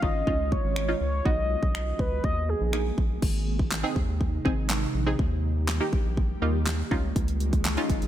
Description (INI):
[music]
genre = dance-pop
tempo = 122 BPM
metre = 4/4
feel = straight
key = Ab major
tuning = A4 = 441 Hz
[part]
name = mellow horn-like synth lead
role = melody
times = 0.0-3.0 s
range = Ab4 to Eb5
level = -30 LUFS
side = equal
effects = chorus, ping-pong delay
[part]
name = punchy chord stab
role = accompaniment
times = 0.0-8.1 s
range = Bb3 to Ab4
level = -31 LUFS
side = right 1 dB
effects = chorus, phaser
[part]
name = ethereal airy pad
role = sustained chords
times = 0.0-8.1 s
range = C3 to Ab4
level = -35 LUFS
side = right 1 dB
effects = ensemble chorus, built-in reverb, sidechain pumping
[part]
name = round analog bass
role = bass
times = 0.0-8.1 s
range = Ab1 to Eb2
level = -28 LUFS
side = equal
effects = sidechain pumping
[part]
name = pop drum kit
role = drums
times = 0.0-8.1 s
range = crash cymbal, finger snaps, handclaps, hi-hat, kick drum, snare drum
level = -27 LUFS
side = equal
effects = none
[part]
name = swell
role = sound effects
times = 7.4-8.1 s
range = none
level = -35 LUFS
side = left 3 dB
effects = none
[sound]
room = little or no reverb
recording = none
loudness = -24 LUFS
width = side -12 dB against mid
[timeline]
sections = 0.0-3.2 A section; 3.2-8.1 B section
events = swell 7.4-8.1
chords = 0.0 Dbadd9; 1.3 B; 2.2 Ebsus4; 3.2 Ab; 5.2 Eb; 6.9 Dbadd9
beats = 0.27 0.77 | 1.26 1.75 2.24 2.73 | 3.22 3.72 4.21 4.70 | 5.19 5.68 6.17 6.67 | 7.16 7.65